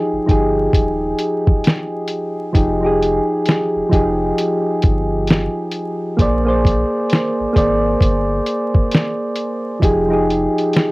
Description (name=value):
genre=lo-fi hip hop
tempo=66 BPM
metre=4/4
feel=swing 63% on 16ths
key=F minor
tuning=A4 = 440 Hz
part: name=soft electric-piano-like synth keys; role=accompaniment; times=0.0-10.9 s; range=F3 to D5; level=-17 LUFS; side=equal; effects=chorus, cassette tape
part: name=soft dub sub bass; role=bass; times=0.1-10.5 s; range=Eb1 to Bb1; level=-23 LUFS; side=equal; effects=tube saturation
part: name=lo-fi sampler-style drum kit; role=drums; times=0.3-10.9 s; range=hi-hat, kick drum, snare drum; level=-15 LUFS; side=equal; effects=vintage 12-bit sampler grit
room=light reverb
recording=home recording on cassette, vinyl crackle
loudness=-15 LUFS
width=side -22 dB against mid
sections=0.0-10.9 A section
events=none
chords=0.0 Fm9; 6.2 Bb9; 9.8 Fm9